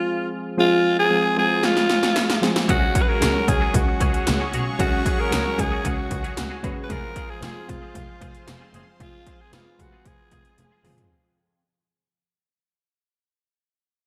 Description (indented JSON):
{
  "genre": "1980s-style pop",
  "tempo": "114 BPM",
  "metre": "4/4",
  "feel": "straight",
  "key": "unclear",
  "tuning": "A4 = 440 Hz",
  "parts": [
    { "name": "raspy alto saxophone", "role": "melody", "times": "0.0-10.9 s", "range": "F4 to Cb5", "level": "-25 LUFS", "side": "equal", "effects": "none" },
    { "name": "soft electric-piano-like synth keys", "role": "accompaniment", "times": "0.0-11.1 s", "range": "F3 to Cb5", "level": "-29 LUFS", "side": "equal", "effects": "chorus" },
    { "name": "80s electronic pad drums", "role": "drums", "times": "1.6-11.1 s", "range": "hi-hat, kick drum, snare drum, tambourine, toms", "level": "-26 LUFS", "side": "equal", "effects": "gated reverb on snare and toms, overdrive, gated reverb" },
    { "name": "crunchy overdriven guitar", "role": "accompaniment", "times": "2.7-11.6 s", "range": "Db3 to F4", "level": "-39 LUFS", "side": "equal", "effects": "none" },
    { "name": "sweeping resonant pad", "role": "sustained chords", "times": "2.7-11.1 s", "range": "Ab4 to Db6", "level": "-38 LUFS", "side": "equal", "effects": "chorus" },
    { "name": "twelve-string electric guitar", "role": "riff", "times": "2.7-11.0 s", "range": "Gb3 to Ab4", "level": "-36 LUFS", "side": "equal", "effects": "ensemble chorus" },
    { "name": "rich double bass", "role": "bass", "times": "2.7-10.9 s", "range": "F1 to Db2", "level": "-31 LUFS", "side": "equal", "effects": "none" }
  ],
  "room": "moderate lush hall reverb, RT60 1.8 s",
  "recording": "bright 1980s-style digital production",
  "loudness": "-21 LUFS",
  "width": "mono",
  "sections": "0.0-11.1 A section",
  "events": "fade-out 0.0-11.1; drum fill 1.6-2.7, 10.6-11.1",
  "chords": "0.0 Fm; 2.7 Dbsus4; 6.9 Fm",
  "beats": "0.05 | 0.58 1.11 1.63 2.16 | 2.69 3.21 3.74 4.26 | 4.79 5.32 5.84 6.37 | 6.90 7.42 7.95 8.47 | 9.00 9.53 10.05 10.58"
}